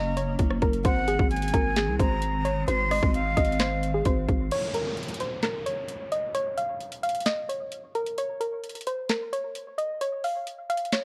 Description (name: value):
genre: hip hop, trap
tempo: 131 BPM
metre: 4/4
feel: half-time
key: unclear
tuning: A4 = 436 Hz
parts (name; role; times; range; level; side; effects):
- soft round pluck; melody; 0.0-11.0 s; Ab4 to F5; -32 LUFS; equal; chorus, low-pass filter, digital delay
- breathy concert flute; second line; 0.0-4.0 s; F5 to C6; -32 LUFS; equal; digital delay
- granular cloud pad; sustained chords; 0.0-4.5 s; Eb3 to Db4; -40 LUFS; equal; built-in reverb
- growling 808-style bass; bass; 0.0-4.5 s; Gb1 to C2; -30 LUFS; equal; none
- trap drum kit; drums; 0.2-11.0 s; crash cymbal, handclaps, hi-hat, kick drum, rim click, snare drum; -30 LUFS; equal; overdrive
- downlifter; sound effects; 4.5-8.2 s; none; -41 LUFS; equal; none
room: digital ambience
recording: worn, warbling old tape, cassette tape, warbly pitch drift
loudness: -27 LUFS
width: mono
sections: 0.0-4.5 A section; 4.5-11.0 B section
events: break 4.5-11.0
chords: 0.0 Gb; 0.8 Ab; 4.5 N.C.